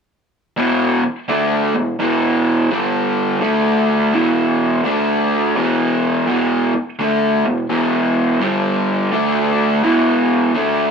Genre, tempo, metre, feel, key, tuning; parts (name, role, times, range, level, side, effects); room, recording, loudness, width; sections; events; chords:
rock; 84 BPM; 4/4; swing 65% on 8ths; E minor; A4 = 437 Hz
raw garage guitar; solo; 0.6-10.9 s; E2 to D4; -14 LUFS; equal; overdrive
moderate studio reverb, RT60 0.7 s; band playing live in one room; -14 LUFS; side -6 dB against mid
0.6-10.9 A section
0.6 E5; 2.7 G5; 3.4 D5; 4.1 E5; 4.9 D5; 5.6 E5; 8.4 G5; 9.1 D5; 9.8 E5